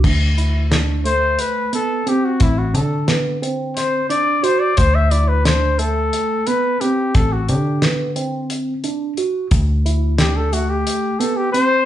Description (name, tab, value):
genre	progressive instrumental, band music in an uneven meter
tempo	177 BPM (eighths)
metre	7/8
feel	straight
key	D mixolydian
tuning	A4 = 440 Hz
part	hollow-body short-scale picked electric bass	bass	0.0-10.8 s	A1 to D3	-18 LUFS	equal	none
part	damped 70s drum kit	drums	0.0-11.7 s	crash cymbal, hi-hat, kick drum, snare drum	-20 LUFS	equal	none
part	tine electric piano	arpeggios	0.4-11.9 s	A3 to F#4	-22 LUFS	right 3 dB	phaser
part	dark trumpet	melody	1.1-11.9 s	E4 to E5	-19 LUFS	left 2 dB	none
part	tube shaker	percussion	9.5-11.5 s	none	-37 LUFS	left 6 dB	none
room	moderate large studio reverb, RT60 0.8 s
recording	band playing live in one room, nothing above 10.8 kHz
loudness	-16 LUFS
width	side -12 dB against mid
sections	0.0-11.9 A section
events	trumpet solo 0.0-11.9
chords	0.0 D7(no3)